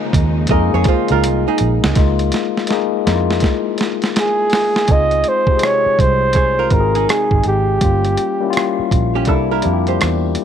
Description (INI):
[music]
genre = R&B, neo-soul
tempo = 82 BPM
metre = 4/4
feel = swing 63% on 16ths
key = Db major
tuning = A4 = 440 Hz
[part]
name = tine electric piano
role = accompaniment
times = 0.0-10.4 s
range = C3 to Ab4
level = -20 LUFS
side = left 13 dB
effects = none
[part]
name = warm studio string section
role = sustained chords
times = 0.0-1.9 s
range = Db3 to Eb4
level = -29 LUFS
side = right 2 dB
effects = none
[part]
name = vintage muted fingered electric bass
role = bass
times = 0.1-10.4 s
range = G1 to F2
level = -18 LUFS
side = right 2 dB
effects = none
[part]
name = boom bap sampler-style drum kit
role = drums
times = 0.1-10.4 s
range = hi-hat, kick drum, rim click, snare drum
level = -18 LUFS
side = right 2 dB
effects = none
[part]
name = archtop guitar, miked and amplified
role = second line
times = 0.5-1.9, 6.4-10.4 s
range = Db4 to Eb5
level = -21 LUFS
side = right 14 dB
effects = none
[part]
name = mellow flugelhorn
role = melody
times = 4.2-8.9 s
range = G4 to Eb5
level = -16 LUFS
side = right 2 dB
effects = slapback echo
[sound]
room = light reverb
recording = 1960s-style stereo with parts hard left and right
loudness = -13 LUFS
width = side -8 dB against mid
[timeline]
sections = 0.0-2.0 A section; 2.0-4.9 B section; 4.9-10.4 C section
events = drum fill 1.2-2.0, 2.0-4.9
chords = 0.0 Db69; 2.0 Db69 (rootless); 4.9 Dbmaj9 (rootless); 7.8 Gm7b5; 9.3 C7